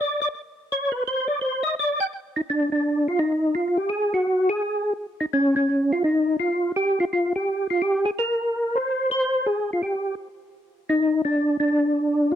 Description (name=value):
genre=jazz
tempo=169 BPM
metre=4/4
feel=swing 65% on 8ths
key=unclear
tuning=A4 = 440 Hz
part: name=percussive tonewheel organ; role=solo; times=0.0-12.4 s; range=Db4 to G5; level=-21 LUFS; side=equal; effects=slow rotary speaker, chorus vibrato, slapback echo
room=little or no reverb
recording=dry, close 1970s-style studio recording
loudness=-21 LUFS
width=side -10 dB against mid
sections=0.0-2.5 A section; 2.5-12.4 B section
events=tonewheel organ solo 0.0-2.5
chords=none